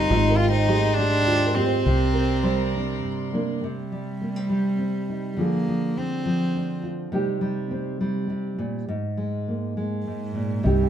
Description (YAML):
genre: acoustic folk-pop ballad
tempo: 103 BPM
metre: 3/4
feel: straight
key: C minor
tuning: A4 = 441 Hz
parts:
  - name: warm cello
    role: melody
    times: 0.0-6.8, 10.1-10.9 s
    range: G2 to F4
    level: -25 LUFS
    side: equal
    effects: none
  - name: nylon-string guitar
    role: accompaniment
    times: 0.0-10.9 s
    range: G2 to Bb4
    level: -25 LUFS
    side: right 1 dB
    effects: none
  - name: warm chamber string section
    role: sustained chords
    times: 0.0-3.6 s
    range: G4 to C6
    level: -32 LUFS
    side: left 3 dB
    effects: none
  - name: felt-muted upright piano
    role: arpeggios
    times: 0.0-3.1, 10.6-10.9 s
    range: F4 to G5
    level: -29 LUFS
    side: right 5 dB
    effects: none
  - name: fingered electric bass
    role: bass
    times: 0.0-3.6, 10.7-10.9 s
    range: Ab1 to G2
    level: -25 LUFS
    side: equal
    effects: none
room: moderate large studio reverb, RT60 1.2 s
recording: minimal, uncompressed stereo recording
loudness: -22 LUFS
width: side -9 dB against mid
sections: 0.0-3.6 A section; 3.6-10.6 B section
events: none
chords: 0.1 Abmaj7; 1.9 Csus2; 3.6 Cm; 5.4 Ddim; 7.1 Cm; 8.9 Absus2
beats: | 0.12 0.69 1.28 | 1.86 2.44 3.03 | 3.62 4.21 4.79 | 5.38 5.96 6.54 | 7.12 7.71 8.29 | 8.87 9.46 10.05 | 10.63